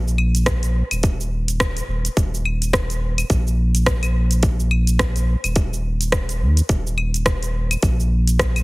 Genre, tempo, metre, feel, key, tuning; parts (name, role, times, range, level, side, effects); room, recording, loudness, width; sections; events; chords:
organic downtempo; 106 BPM; 4/4; swing 58% on 16ths; A4 = 440 Hz
warm sub bass; bass; 0.0-8.6 s; Eb1 to Eb2; -19 LUFS; equal; tube saturation
afro-pop drum kit; drums; 0.1-8.6 s; claves, hi-hat, rim click, shaker; -23 LUFS; equal; studio reverb
electronic kick drum; drums; 0.5-8.5 s; -22 LUFS; equal; overdrive, studio reverb
little or no reverb; heavily compressed radio sound, multiband compression; -17 LUFS; side -23 dB against mid
0.0-8.6 A section